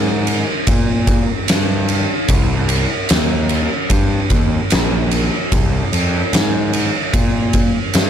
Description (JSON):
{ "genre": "stoner and doom metal", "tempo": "74 BPM", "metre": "4/4", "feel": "straight", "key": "C minor", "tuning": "A4 = 441 Hz", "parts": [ { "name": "fuzz picked electric bass", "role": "bass", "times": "0.0-8.1 s", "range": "Bb1 to Bb2", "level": "-18 LUFS", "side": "equal", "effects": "overdrive" }, { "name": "oversized low-tuned drum kit", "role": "drums", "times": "0.3-8.1 s", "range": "kick drum, ride cymbal, snare drum", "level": "-16 LUFS", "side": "equal", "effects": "none" } ], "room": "little or no reverb", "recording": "dark, warm production", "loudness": "-14 LUFS", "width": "side -9 dB against mid", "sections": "0.0-8.1 A section", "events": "none", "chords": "none" }